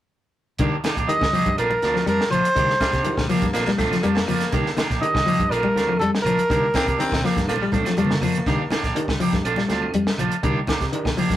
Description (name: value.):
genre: afrobeat.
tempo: 122 BPM.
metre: 4/4.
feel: straight.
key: C dorian.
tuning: A4 = 445 Hz.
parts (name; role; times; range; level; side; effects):
overdriven reed electric piano; accompaniment; 0.6-11.1 s; C4 to Bb4; -30 LUFS; right 3 dB; none.
clean electric guitar; arpeggios; 0.6-11.3 s; D3 to G3; -24 LUFS; left 3 dB; none.
electric guitar at the edge of break-up; stabs; 0.6-11.3 s; Eb3 to G4; -27 LUFS; right 5 dB; spring reverb.
fingered electric bass; bass; 0.6-11.4 s; Bb1 to C3; -29 LUFS; equal; none.
compact cocktail drum kit; drums; 0.6-11.4 s; hi-hat, kick drum, snare drum; -26 LUFS; equal; none.
claves; percussion; 0.8-11.2 s; none; -42 LUFS; right 1 dB; none.
congas; percussion; 0.8-11.3 s; none; -31 LUFS; equal; none.
warm trumpet; melody; 1.1-7.2 s; A4 to Eb5; -21 LUFS; right 1 dB; none.
growling baritone saxophone; second line; 2.8-8.9 s; F3 to C4; -28 LUFS; left 1 dB; none.
room: moderate studio reverb, RT60 0.5 s.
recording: rough rehearsal-room recording, tube saturation.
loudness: -18 LUFS.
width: side -13 dB against mid.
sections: 0.6-11.4 A section.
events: drum fill 7.5-8.5.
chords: 0.6 Cm9; 1.6 Bbmaj7; 2.6 Cm9; 3.5 Bbmaj7; 4.5 Cm9; 5.5 Bbmaj7; 6.5 Cm9; 7.5 Bbmaj7; 8.5 Cm9; 9.4 Bbmaj7; 10.4 Cm9.